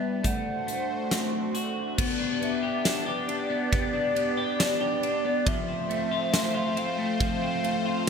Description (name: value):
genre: dream pop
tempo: 69 BPM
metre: 4/4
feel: straight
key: G mixolydian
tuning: A4 = 440 Hz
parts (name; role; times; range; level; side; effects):
- hollow clarinet-like synth lead; melody; 0.0-8.1 s; D5 to F#5; -31 LUFS; equal; chorus, ping-pong delay
- phased analog pad; sustained chords; 0.0-8.1 s; G3 to D5; -30 LUFS; equal; phaser, chorus
- electric guitar at the edge of break-up; arpeggios; 0.0-8.1 s; F3 to G4; -30 LUFS; left 2 dB; wide subtle chorus, ping-pong delay
- huge arena drum kit; drums; 0.2-7.8 s; crash cymbal, hi-hat, kick drum, ride cymbal, snare drum, tambourine; -30 LUFS; equal; gated reverb
room: moderate plate reverb, RT60 2.5 s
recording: bright 1980s-style digital production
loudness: -25 LUFS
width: side -6 dB against mid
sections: 0.0-2.0 A section; 2.0-8.1 B section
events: none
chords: 0.2 D7; 2.0 G; 5.5 F